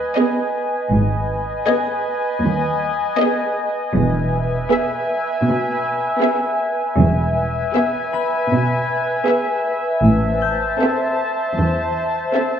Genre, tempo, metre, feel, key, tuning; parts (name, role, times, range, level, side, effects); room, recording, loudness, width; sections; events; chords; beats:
cinematic; 79 BPM; 4/4; straight; A4 = 439 Hz
warbly tape-like pad; sustained chords; 0.0-12.6 s; Cb5 to A5; -20 LUFS; left 1 dB; chorus, built-in reverb
concert harp; texture; 0.0-12.6 s; B5 to Cb7; -27 LUFS; left 7 dB
warm symphonic violin section; melody; 0.2-12.6 s; Eb5 to E5; -25 LUFS; left 5 dB
dark symphonic viola section; accompaniment; 0.2-12.6 s; Cb4 to A4; -21 LUFS; right 2 dB
dark symphonic cello section; bass; 0.9-12.2 s; Eb2 to B2; -20 LUFS; right 1 dB
dark symphonic double bass section; bass; 0.9-10.7 s; E1 to A1; -21 LUFS; right 1 dB
wet recital hall reverb, RT60 1.5 s; lossy compression artefacts; -17 LUFS; side -8 dB against mid
0.0-12.6 A section
0.0 Abm; 4.0 E; 10.0 Am
0.16 | 0.92 1.68 2.43 3.19 | 3.95 4.71 5.46 6.22 | 6.98 7.75 8.51 9.27 | 10.04 10.81 11.58 12.36